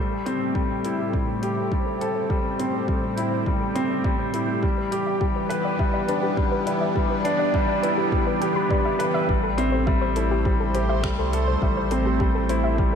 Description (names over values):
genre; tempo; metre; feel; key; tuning
piano and strings electronica; 103 BPM; 4/4; straight; A minor; A4 = 441 Hz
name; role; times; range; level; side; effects
lush unison pad; sustained chords; 0.0-13.0 s; A2 to E5; -28 LUFS; right 1 dB; chorus, phaser, sidechain pumping
soft round pluck; arpeggios; 0.0-12.9 s; G4 to B5; -31 LUFS; left 2 dB; chorus, vintage 12-bit sampler grit, sidechain pumping, ping-pong delay
felt-muted upright piano; riff; 0.0-13.0 s; G3 to B4; -24 LUFS; left 1 dB; ping-pong delay
deep house drum kit; drums; 0.3-12.6 s; finger snaps, hi-hat; -38 LUFS; left 1 dB; none
electronic kick drum; drums; 0.6-12.9 s; none; -25 LUFS; equal; none
warm sub bass; bass; 9.3-13.0 s; A1 to C2; -26 LUFS; equal; sidechain pumping
room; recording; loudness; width
wet lush hall reverb, RT60 1.9 s; dreamy mix soaked in reverb; -21 LUFS; side -7 dB against mid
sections
0.0-9.3 A section; 9.3-13.0 B section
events
build-up 0.0-9.3; filter sweep on synth arpeggio sound 0.0-9.3; drop 9.3-13.0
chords
0.0 Am7; 4.6 Em7; 9.3 Am7